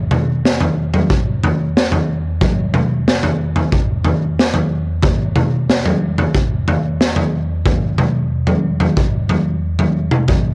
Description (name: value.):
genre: rock.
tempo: 92 BPM.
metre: 4/4.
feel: straight.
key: none.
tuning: none.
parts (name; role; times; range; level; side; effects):
raw garage drum kit; drums; 0.1-10.4 s; kick drum, snare drum, toms; -16 LUFS; equal; none.
room: little or no reverb.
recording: home recording on cassette.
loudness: -17 LUFS.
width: mono.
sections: 0.0-10.5 A section.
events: none.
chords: none.